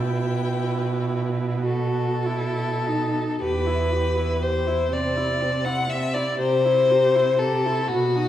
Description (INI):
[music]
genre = classical, slow romantic movement for string quartet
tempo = 33-41 BPM (dotted quarters)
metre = 6/8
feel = rubato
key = E minor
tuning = A4 = 439 Hz
[part]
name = warm violin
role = melody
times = 0.0-8.3 s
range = E5 to D#6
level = -38 LUFS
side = left 7 dB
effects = none
[part]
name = rich violin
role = second line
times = 0.0-8.3 s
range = F#4 to F#5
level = -23 LUFS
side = left 3 dB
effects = none
[part]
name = warm viola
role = accompaniment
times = 0.0-8.3 s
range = C4 to G4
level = -28 LUFS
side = equal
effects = none
[part]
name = rich cello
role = bass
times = 0.0-8.3 s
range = E2 to C3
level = -25 LUFS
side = right 3 dB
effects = none
[sound]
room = wet recital hall reverb, RT60 1.7 s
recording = heard from further back in the room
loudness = -20 LUFS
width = side -12 dB against mid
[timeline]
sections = 0.0-3.4 A section; 3.4-8.3 B section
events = none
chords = 0.0 Em/B; 1.7 B; 3.4 Em; 4.9 Am/C; 6.4 C7